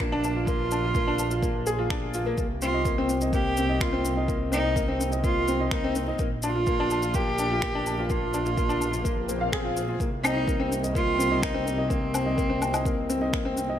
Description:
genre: piano and strings electronica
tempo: 126 BPM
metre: 4/4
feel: straight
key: C minor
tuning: A4 = 442 Hz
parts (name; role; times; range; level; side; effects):
- warm cello; melody; 0.0-13.3 s; C4 to G4; -28 LUFS; right 2 dB; none
- clear upright piano; riff; 0.0-13.8 s; Bb3 to F5; -28 LUFS; left 2 dB; ping-pong delay
- rich studio double bass section; bass; 0.0-13.8 s; Bb1 to C2; -31 LUFS; right 1 dB; sidechain pumping
- electronic finger snaps, shaker and woodblock; drums; 0.0-13.7 s; none; -34 LUFS; left 2 dB; none
- electronic kick drum; drums; 0.0-13.4 s; none; -29 LUFS; equal; none
- swell; sound effects; 9.2-10.0 s; none; -37 LUFS; left 3 dB; none
room: light reverb, studio reverb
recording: none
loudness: -23 LUFS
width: side -10 dB against mid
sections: 0.0-13.8 A section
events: swell 9.2-10.0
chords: 0.0 Bb7; 2.4 Cm7; 6.2 Bb7; 10.0 Cm7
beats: 0.00 | 0.48 0.95 1.43 1.91 | 2.38 2.86 3.33 3.81 | 4.29 4.76 5.24 5.71 | 6.19 6.67 7.14 7.62 | 8.10 8.57 9.05 9.52 | 10.00 10.48 10.95 11.43 | 11.90 12.38 12.86 13.33

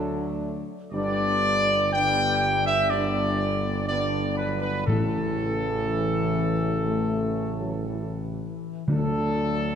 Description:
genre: classical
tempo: 60 BPM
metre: 4/4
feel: straight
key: unclear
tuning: A4 = 441 Hz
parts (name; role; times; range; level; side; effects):
- clear trumpet section; melody; 0.0-9.8 s; A4 to G5; -26 LUFS; equal; none
- bright trombone section; sustained chords; 0.0-9.8 s; C#3 to G3; -33 LUFS; right 1 dB; none
- warm French horn section; sustained chords; 0.0-9.8 s; E3 to E4; -31 LUFS; left 5 dB; none
- warm tuba; bass; 0.0-9.8 s; G1 to D2; -29 LUFS; right 2 dB; none
- timpani; percussion; 4.9-9.8 s; A2 to D3; -27 LUFS; left 2 dB; none
room: wet scoring stage reverb, RT60 1.9 s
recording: none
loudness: -23 LUFS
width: side -8 dB against mid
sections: 0.0-9.8 A section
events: none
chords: 0.0 D; 0.9 G; 4.9 A; 8.9 D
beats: | 0.92 1.92 2.90 3.88 | 4.87 5.87 6.87 7.88 | 8.89

